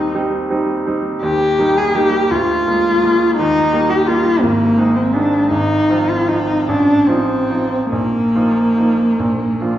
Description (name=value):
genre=classical, romantic duo for cello and grand piano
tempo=46-57 BPM (dotted quarters)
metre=6/8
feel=rubato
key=Eb major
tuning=A4 = 436 Hz
part: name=warm cello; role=melody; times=0.0-9.8 s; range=Bb3 to Ab4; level=-14 LUFS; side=left 1 dB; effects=none
part: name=bright grand piano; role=accompaniment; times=0.0-9.8 s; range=Ab1 to F4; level=-18 LUFS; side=right 2 dB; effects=none
room=wet recital hall reverb, RT60 1.5 s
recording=heard from further back in the room, nothing above 7.6 kHz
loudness=-13 LUFS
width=side -12 dB against mid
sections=0.0-9.8 A section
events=none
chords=0.0 Cm/Eb; 1.2 Eb; 2.3 Bb7/D; 3.4 Eb; 4.4 Ab; 5.5 Fm/Ab; 6.7 F7/A; 7.9 Bbsus4; 9.2 Bb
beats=0.15 | 1.23 2.31 | 3.38 4.44 | 5.52 6.70 | 7.93 9.21